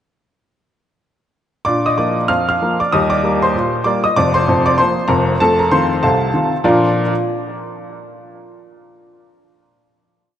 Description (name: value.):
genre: ragtime piano.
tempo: 96 BPM.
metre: 2/4.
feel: swing 60% on 16ths.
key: Bb major.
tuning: A4 = 440 Hz.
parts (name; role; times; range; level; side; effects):
clear upright piano; solo; 1.6-7.1 s; F1 to F6; -14 LUFS; equal; analog delay.
room: wet plate reverb, RT60 3.3 s.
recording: dreamy mix soaked in reverb, nothing above 10.3 kHz.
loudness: -13 LUFS.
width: side -10 dB against mid.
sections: 1.7-6.7 A section; 6.7-7.9 final chord.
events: none.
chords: 1.7 Bb; 2.9 Eb; 4.2 Bb/F; 5.4 F7; 6.7 Bb.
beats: | 1.66 2.29 | 2.91 3.54 | 4.16 4.78 | 5.41 6.04 | 6.66.